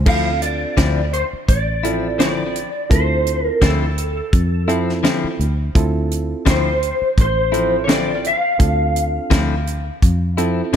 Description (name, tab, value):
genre	straight-eighth soul blues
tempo	84 BPM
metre	4/4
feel	swing 55% on 16ths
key	D minor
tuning	A4 = 440 Hz
part	reed electric piano	accompaniment	0.0-10.8 s	C4 to A4	-25 LUFS	right 5 dB	none
part	fingered electric bass	bass	0.0-10.8 s	A1 to F2	-20 LUFS	equal	none
part	electric guitar through a small old amp	melody	0.1-10.4 s	A4 to F5	-20 LUFS	equal	ensemble chorus
part	direct-recorded clean electric guitar	stabs	0.1-10.8 s	D3 to E4	-24 LUFS	left 7 dB	digital delay
part	tight funk drum kit	drums	0.1-10.8 s	crash cymbal, hi-hat, kick drum, snare drum	-18 LUFS	equal	none
room	light reverb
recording	none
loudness	-16 LUFS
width	side -9 dB against mid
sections	0.1-10.8 A section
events	none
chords	0.1 Dm9